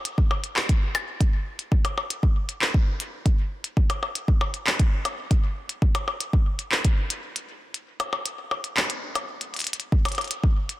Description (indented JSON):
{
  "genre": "IDM",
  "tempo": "117 BPM",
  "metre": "4/4",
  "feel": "straight",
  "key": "none",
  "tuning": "none",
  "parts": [
    { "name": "glitchy drum kit", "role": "drums", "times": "0.1-10.8 s", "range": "handclaps, hi-hat, percussion blips", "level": "-27 LUFS", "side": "left 1 dB", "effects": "none" },
    { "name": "electronic kick drum", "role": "drums", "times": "0.2-10.5 s", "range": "none", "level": "-21 LUFS", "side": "equal", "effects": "none" }
  ],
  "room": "little or no reverb",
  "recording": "dense, heavily limited modern master",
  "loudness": "-22 LUFS",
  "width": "side -16 dB against mid",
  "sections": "0.0-10.8 A section",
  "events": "break 7.7-9.8; drum fill 9.5",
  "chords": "none"
}